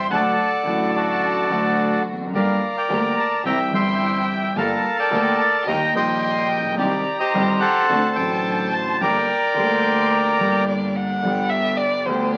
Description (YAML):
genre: tango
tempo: 108 BPM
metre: 4/4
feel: rubato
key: G minor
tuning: A4 = 440 Hz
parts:
  - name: bandoneon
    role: melody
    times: 0.0-10.7 s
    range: F#4 to C6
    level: -22 LUFS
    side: equal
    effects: none
  - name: warm violin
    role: second line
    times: 0.0-12.4 s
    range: C5 to C6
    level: -30 LUFS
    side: equal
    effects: none
  - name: warm concert grand piano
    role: accompaniment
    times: 0.0-12.4 s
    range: G1 to G4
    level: -27 LUFS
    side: equal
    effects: none
  - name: rich chamber string section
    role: stabs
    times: 0.0-12.4 s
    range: F#3 to A4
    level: -34 LUFS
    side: equal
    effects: none
  - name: clear double bass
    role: bass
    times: 0.0-12.4 s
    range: F1 to Eb2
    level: -32 LUFS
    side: equal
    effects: none
room: moderate studio reverb, RT60 0.6 s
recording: very old 78 rpm record, vinyl crackle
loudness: -20 LUFS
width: mono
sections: 0.0-11.2 A section; 11.2-12.4 B section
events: violin solo 11.2-12.4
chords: 0.1 D; 2.3 Gm; 3.4 C; 4.6 Gmadd9; 5.7 Eb; 6.8 Cm; 7.9 D7; 9.0 Gm; 11.2 G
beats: | 0.11 0.66 1.22 1.77 | 2.33 2.89 3.45 4.01 | 4.56 5.12 5.67 6.23 | 6.79 7.34 7.90 8.45 | 9.01 9.56 10.12 10.68 | 11.24 11.80 12.36